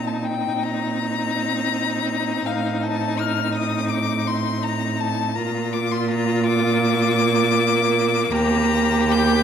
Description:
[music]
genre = classical, slow romantic movement for string quartet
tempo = 82 BPM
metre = 4/4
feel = rubato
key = Bb major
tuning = A4 = 440 Hz
[part]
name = rich violin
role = melody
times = 0.0-9.4 s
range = F5 to G6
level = -24 LUFS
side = left 9 dB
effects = none
[part]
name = rich violin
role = second line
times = 0.0-9.4 s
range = Eb4 to G4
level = -26 LUFS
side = left 3 dB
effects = none
[part]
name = rich viola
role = accompaniment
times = 0.0-9.4 s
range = Bb3 to C4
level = -26 LUFS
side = right 2 dB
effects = none
[part]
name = rich cello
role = bass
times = 0.0-9.4 s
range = Eb2 to Bb2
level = -23 LUFS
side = right 5 dB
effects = none
[sound]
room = moderate scoring stage reverb, RT60 1.6 s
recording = none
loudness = -19 LUFS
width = side -8 dB against mid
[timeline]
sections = 0.0-9.4 A section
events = none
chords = 0.0 Cm7/Bb; 2.5 Adim; 5.4 Bb; 8.3 Eb

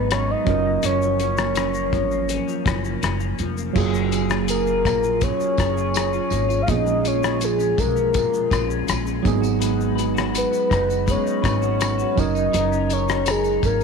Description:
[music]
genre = indie pop, bedroom pop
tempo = 82 BPM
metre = 4/4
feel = straight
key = F# major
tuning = A4 = 440 Hz
[part]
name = soft octave-layered synth lead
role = melody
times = 0.0-13.8 s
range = G#4 to E#5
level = -22 LUFS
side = left 2 dB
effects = analog chorus, tape echo
[part]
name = electric guitar through a small old amp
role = accompaniment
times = 0.0-13.8 s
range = F#2 to B4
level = -28 LUFS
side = left 11 dB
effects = analog chorus, warbly pitch drift
[part]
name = tine electric piano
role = accompaniment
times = 0.0-13.8 s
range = E#3 to A#4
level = -25 LUFS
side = right 13 dB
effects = slow stereo tremolo, cassette tape
[part]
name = upright bass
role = bass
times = 0.0-13.8 s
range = E#1 to B1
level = -26 LUFS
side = equal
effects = tube saturation
[part]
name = cloth-damped thuddy drum kit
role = drums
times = 0.1-13.8 s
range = crash cymbal, hi-hat, kick drum, rim click, shaker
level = -26 LUFS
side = left 4 dB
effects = none
[part]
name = tambourine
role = percussion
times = 3.8-13.8 s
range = none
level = -37 LUFS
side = right 16 dB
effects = none
[sound]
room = light reverb, studio ambience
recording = 1960s-style stereo with parts hard left and right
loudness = -18 LUFS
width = side -5 dB against mid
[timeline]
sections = 0.0-3.8 A section; 3.8-13.8 A section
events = none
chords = 0.5 F#maj7; 3.8 F#maj9; 6.7 A#m7; 9.2 G#m7; 12.2 D#m7/F#

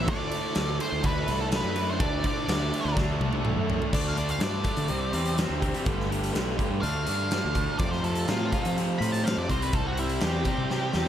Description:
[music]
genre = classic rock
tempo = 124 BPM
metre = 4/4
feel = straight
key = unclear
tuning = A4 = 440 Hz
[part]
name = octave-fuzz lead guitar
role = melody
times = 0.0-11.1 s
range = E4 to B5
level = -32 LUFS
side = equal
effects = distortion
[part]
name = bright tonewheel organ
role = sustained chords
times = 0.0-11.1 s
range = G3 to G5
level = -40 LUFS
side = equal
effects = none
[part]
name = overdriven electric guitar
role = riff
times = 0.0-11.1 s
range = F2 to D4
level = -30 LUFS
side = right 1 dB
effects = none
[part]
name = fuzz fingered electric bass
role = bass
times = 0.0-11.1 s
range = G1 to F3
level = -30 LUFS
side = equal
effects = overdrive
[part]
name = big rock drum kit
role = drums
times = 0.1-11.1 s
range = crash cymbal, hi-hat, kick drum, ride cymbal, snare drum, toms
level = -30 LUFS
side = equal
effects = none
[sound]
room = light reverb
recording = none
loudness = -24 LUFS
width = side -10 dB against mid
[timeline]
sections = 0.0-3.9 A section; 3.9-11.1 B section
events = drum fill 3.0-3.9, 10.7-11.1; lead electric guitar solo 3.9-11.1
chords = 0.1 D; 3.9 Dsus4; 4.9 C; 5.9 Gadd9; 6.8 Dsus4; 7.8 F; 9.5 C

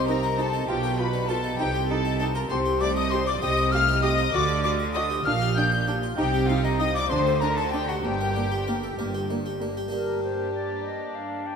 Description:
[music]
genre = classical, baroque-style concerto movement with solo episodes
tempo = 65 BPM (dotted quarters)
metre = 6/8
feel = straight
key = G minor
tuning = A4 = 440 Hz
[part]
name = bright wooden flute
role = melody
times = 0.0-11.6 s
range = Bb4 to G6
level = -29 LUFS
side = left 3 dB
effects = none
[part]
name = warm chamber violin section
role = melody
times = 0.0-11.6 s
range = Bb4 to G6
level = -33 LUFS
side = left 7 dB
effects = none
[part]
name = rich chamber violin section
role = second line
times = 0.0-11.6 s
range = Eb4 to G5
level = -30 LUFS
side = left 3 dB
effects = none
[part]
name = harpsichord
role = accompaniment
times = 0.0-11.6 s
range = G2 to Bb4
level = -31 LUFS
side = left 1 dB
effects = none
[part]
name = rich chamber cello section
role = bass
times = 0.0-11.6 s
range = G2 to D3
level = -30 LUFS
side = right 4 dB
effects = none
[part]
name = rich chamber double bass section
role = bass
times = 0.0-9.8 s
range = G1 to D2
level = -30 LUFS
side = right 4 dB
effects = none
[part]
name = dark chamber viola section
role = accompaniment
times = 0.1-11.6 s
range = Bb3 to G4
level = -32 LUFS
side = right 1 dB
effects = none
[sound]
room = wet cathedral reverb, RT60 4.9 s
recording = in a vast, echoing space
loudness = -22 LUFS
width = side -6 dB against mid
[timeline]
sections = 0.0-9.9 A section; 9.9-11.6 B section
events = none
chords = 0.0 Cm; 0.7 G9/B; 1.6 Cm; 2.5 Am7b5/C; 4.3 D; 5.3 Gm/Bb; 6.2 Cm; 7.1 D; 8.0 Gm

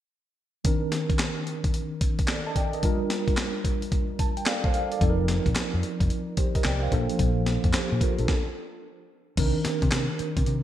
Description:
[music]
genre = R&B, new jack swing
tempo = 110 BPM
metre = 4/4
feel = swing 64% on 16ths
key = C dorian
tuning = A4 = 444 Hz
[part]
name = mellow tine electric piano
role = accompaniment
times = 0.6-10.6 s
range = Eb3 to A5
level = -28 LUFS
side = right 1 dB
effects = medium stereo tremolo
[part]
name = breakbeat sampler-style drum kit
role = drums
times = 0.6-10.6 s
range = crash cymbal, handclaps, hi-hat, kick drum, snare drum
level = -26 LUFS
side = equal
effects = gated reverb
[part]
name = vintage muted fingered electric bass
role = bass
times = 5.0-10.6 s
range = F1 to C3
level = -26 LUFS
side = equal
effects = none
[sound]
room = moderate lush hall reverb, RT60 2.0 s, digital ambience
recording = bright 1980s-style digital production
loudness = -23 LUFS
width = side -12 dB against mid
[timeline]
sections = 0.6-9.4 A section; 9.4-10.6 B section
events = tine electric piano fill 3.9-5.0; stop 8.3-9.4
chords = 0.6 Cm9; 2.8 Gm7; 5.0 F7sus4; 6.9 Bbmaj7; 9.4 Cm9

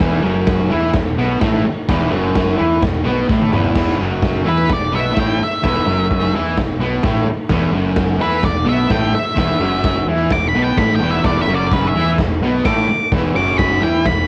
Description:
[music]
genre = garage rock duo or trio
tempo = 128 BPM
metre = 4/4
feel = straight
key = unclear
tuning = A4 = 440 Hz
[part]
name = fuzz guitar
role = riff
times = 0.0-14.2 s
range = E2 to E4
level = -20 LUFS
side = equal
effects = distortion, cassette tape
[part]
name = fuzz fingered electric bass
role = bass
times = 0.0-14.3 s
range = E1 to E2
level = -26 LUFS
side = equal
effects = overdrive
[part]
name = raw garage drum kit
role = drums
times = 0.0-14.2 s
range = crash cymbal, kick drum, snare drum, toms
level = -22 LUFS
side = equal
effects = cassette tape
[part]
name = octave-fuzz lead guitar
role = melody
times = 4.5-14.3 s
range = B4 to D6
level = -22 LUFS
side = equal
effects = distortion
[sound]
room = small room ambience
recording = home recording on cassette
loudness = -17 LUFS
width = mono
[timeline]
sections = 0.0-3.8 A section; 3.8-14.3 B section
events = drum fill 3.3-3.8; lead electric guitar solo 3.8-14.3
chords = 0.0 E5

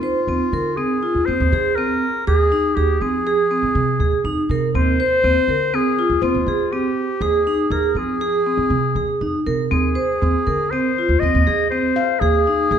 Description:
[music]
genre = contemporary instrumental, chamber music in an uneven meter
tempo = 121 BPM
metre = 5/4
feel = straight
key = unclear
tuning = A4 = 436 Hz
[part]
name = bright clarinet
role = melody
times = 0.0-12.8 s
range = F4 to Eb5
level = -21 LUFS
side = left 4 dB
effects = none
[part]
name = vibraphone with hard mallets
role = arpeggios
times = 0.0-12.8 s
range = C4 to C5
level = -20 LUFS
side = right 4 dB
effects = none
[part]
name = handpan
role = texture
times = 0.0-2.0, 6.2-6.7, 12.0-12.4 s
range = Eb4 to F5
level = -29 LUFS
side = left 5 dB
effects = none
[part]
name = upright bass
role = bass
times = 0.3-12.8 s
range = Eb2 to F3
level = -22 LUFS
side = right 1 dB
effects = none
[sound]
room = moderate scoring stage reverb, RT60 2.0 s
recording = minimal, uncompressed stereo recording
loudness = -16 LUFS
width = side -8 dB against mid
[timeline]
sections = 0.0-12.8 A section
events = none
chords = 0.0 Fm7/Eb; 2.3 Ab/Eb; 4.7 F7(no3)/Eb; 7.2 Ab/Eb; 9.7 Fm7/Eb; 12.2 Ab5/Eb

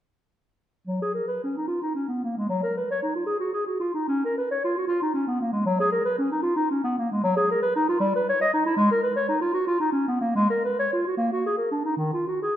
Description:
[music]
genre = classical, baroque-style fantasia for unaccompanied clarinet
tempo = 70-79 BPM (dotted quarters)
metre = 6/8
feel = rubato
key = F# major, Eb minor from 7.2 s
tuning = A4 = 440 Hz
[part]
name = dark clarinet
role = solo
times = 0.9-12.6 s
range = Eb3 to Eb5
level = -22 LUFS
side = equal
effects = none
[sound]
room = wet recital hall reverb, RT60 1.5 s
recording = minimal, uncompressed stereo recording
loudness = -22 LUFS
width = side -11 dB against mid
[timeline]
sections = 0.9-12.6 A section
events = none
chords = none

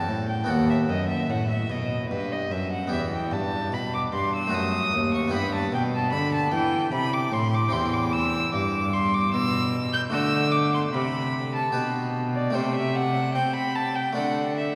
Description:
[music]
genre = classical, baroque-style sonata movement with continuo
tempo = 75 BPM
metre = 3/4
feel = straight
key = E minor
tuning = A4 = 440 Hz
[part]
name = warm violin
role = melody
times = 0.0-14.8 s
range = B4 to G6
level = -29 LUFS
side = equal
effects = none
[part]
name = harpsichord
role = accompaniment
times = 0.0-14.8 s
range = D#2 to B4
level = -32 LUFS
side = equal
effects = none
[part]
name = rich cello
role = bass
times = 0.0-14.8 s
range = D#2 to C4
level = -29 LUFS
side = equal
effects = none
[sound]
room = wet cathedral reverb, RT60 4.3 s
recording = none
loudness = -25 LUFS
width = mono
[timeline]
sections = 0.0-14.8 A section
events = none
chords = 0.5 B7/D#; 2.9 Em; 4.5 D#dim/F#; 5.3 Em/G; 7.7 C/E; 10.1 D; 11.7 G/B; 12.6 Am7/C; 14.2 D

